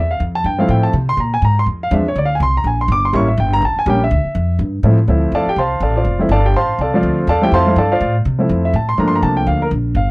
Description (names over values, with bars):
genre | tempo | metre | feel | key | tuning
jazz, small-group swing and bop | 246 BPM | 4/4 | swing 58% on 8ths | D minor | A4 = 440 Hz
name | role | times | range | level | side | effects
warm grand piano | accompaniment | 0.0-10.1 s | F3 to D6 | -15 LUFS | equal | none
upright bass | bass | 0.0-10.1 s | F1 to C3 | -16 LUFS | equal | none
room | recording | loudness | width
little or no reverb | dry, close 1970s-style studio recording | -13 LUFS | side -26 dB against mid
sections
0.0-5.1 A section; 5.1-10.1 A section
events
none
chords
0.0 Dm7 (rootless); 1.2 Bb7; 3.1 A7b9; 4.1 Dm7; 9.0 Gm7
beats
| 0.20 0.45 0.69 0.94 | 1.18 1.43 1.67 1.91 | 2.16 2.40 2.65 2.89 | 3.13 3.38 3.62 3.87 | 4.11 4.35 4.60 4.84 | 5.08 5.33 5.57 5.82 | 6.06 6.30 6.55 6.79 | 7.03 7.28 7.52 7.76 | 8.01 8.25 8.49 8.74 | 8.98 9.22 9.46 9.71 | 9.95